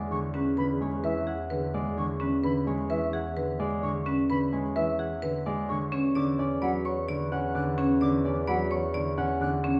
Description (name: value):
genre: classical, minimalist pattern music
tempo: 129 BPM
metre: 4/4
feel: straight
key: E mixolydian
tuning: A4 = 438 Hz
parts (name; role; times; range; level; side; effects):
- Celtic harp; melody; 0.0-9.8 s; B4 to C#6; -37 LUFS; equal; none
- dark clarinet; second line; 0.0-1.9, 5.9-9.4 s; G#4 to B4; -42 LUFS; equal; none
- dark concert grand piano; accompaniment; 0.0-9.7 s; D3 to C#4; -33 LUFS; equal; none
- rich double bass; bass; 0.0-9.8 s; E2; -37 LUFS; equal; none
- silver concert flute; arpeggios; 0.1-9.5 s; E5 to F#6; -40 LUFS; equal; none
- marimba with hard mallets; arpeggios; 0.3-9.8 s; C#4 to D5; -32 LUFS; equal; none
room: wet large studio reverb, RT60 1.2 s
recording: heard from further back in the room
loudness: -28 LUFS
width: mono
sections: 0.0-9.8 A section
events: none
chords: 0.0 E9; 5.9 Bm/E